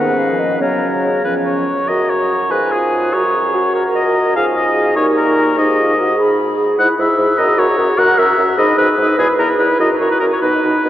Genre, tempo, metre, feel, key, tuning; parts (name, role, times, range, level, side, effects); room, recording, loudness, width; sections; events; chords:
quick classical-period movement for wind quintet; 93-101 BPM (dotted quarters); 6/8; straight; A4 = 439 Hz
concert flute; melody; 0.0-10.9 s; C#5 to C#6; -22 LUFS; left 3 dB
clear oboe; second line; 0.0-10.9 s; G#4 to F#5; -16 LUFS; left 1 dB
mellow clarinet; accompaniment; 0.0-10.9 s; B3 to B4; -22 LUFS; right 2 dB
warm French horn; accompaniment; 0.0-10.9 s; D#3 to G#4; -20 LUFS; equal
mellow bassoon; bass; 0.0-10.9 s; E2 to C#3; -18 LUFS; right 1 dB
wet cathedral reverb, RT60 4.6 s; worn, warbling old tape, cassette tape, warbly pitch drift; -12 LUFS; side -12 dB against mid
0.0-1.9 A section; 1.9-10.9 B section
0.0 G#m; 0.6 F#/C#; 1.2 C#; 1.9 F#; 2.5 G#m6; 3.1 F#; 4.4 G#5; 5.0 D#7/A#; 5.6 G#m; 6.8 E/G#; 7.4 F#; 8.6 G#m; 9.2 E5; 9.8 F#7